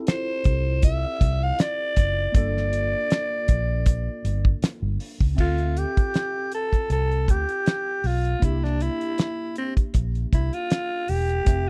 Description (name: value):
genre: lush 1970s-style soul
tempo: 79 BPM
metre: 4/4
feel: swing 54% on 16ths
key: D minor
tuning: A4 = 442 Hz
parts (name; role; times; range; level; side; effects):
- tine electric piano; accompaniment; 0.0-11.7 s; A3 to E5; -38 LUFS; equal; ensemble chorus
- growling alto saxophone; melody; 0.1-11.7 s; C4 to F5; -29 LUFS; equal; none
- cloth-damped thuddy drum kit; drums; 0.1-11.7 s; crash cymbal, hi-hat, kick drum, snare drum; -23 LUFS; equal; none
- vintage muted fingered electric bass; bass; 0.5-11.7 s; E1 to D2; -27 LUFS; equal; none
room: small room reverb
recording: dry, close 1970s-style studio recording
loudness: -24 LUFS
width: mono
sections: 0.0-5.4 A section; 5.4-11.7 B section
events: alto saxophone solo 5.4-11.7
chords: 0.0 Dm9; 2.3 Gm7; 5.4 Dm7; 8.4 C7